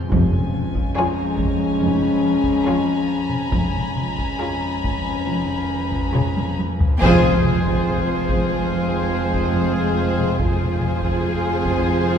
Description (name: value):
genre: cinematic, suspense film score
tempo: 71 BPM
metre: 4/4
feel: straight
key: F minor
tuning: A4 = 440 Hz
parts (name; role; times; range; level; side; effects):
- metallic inharmonic drone; drone; 0.0-12.2 s; F2; -27 LUFS; left 1 dB; chorus, built-in reverb
- mellow French horn section; sustained chords; 0.1-12.2 s; Ab3 to Db4; -24 LUFS; left 1 dB; none
- dark chamber cello section; riff; 0.1-12.2 s; F2 to F3; -29 LUFS; right 1 dB; none
- rich studio double bass section; bass; 0.1-12.2 s; F1; -29 LUFS; right 2 dB; none
- warm chamber cello section; bass; 0.1-12.2 s; F2; -25 LUFS; right 2 dB; none
- taiko ensemble; drums; 0.1-12.2 s; none; -25 LUFS; left 1 dB; none
- warm chamber violin section; texture; 0.1-6.6 s; Ab5 to B5; -29 LUFS; left 2 dB; none
- dark studio violin section; melody; 1.0-12.2 s; C5 to Db5; -27 LUFS; left 2 dB; none
- warm symphonic violin section; second line; 1.0-12.2 s; Ab4; -26 LUFS; left 2 dB; none
- rich chamber viola section; accompaniment; 1.0-12.2 s; F4; -27 LUFS; right 3 dB; none
- impact; sound effects; 7.1-10.4 s; none; -28 LUFS; left 1 dB; none
room: wet concert hall reverb, RT60 2.5 s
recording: heard from further back in the room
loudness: -18 LUFS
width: side -8 dB against mid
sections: 0.0-7.0 A section; 7.0-12.2 B section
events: drum fill 6.2-7.0; band accent 7.0-7.9; impact 7.0-10.4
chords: 0.1 Db/F; 7.0 Fm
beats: | 0.13 0.97 1.81 2.67 | 3.54 4.42 5.29 6.16 | 7.02 7.87 8.71 9.55 | 10.39 11.23 12.07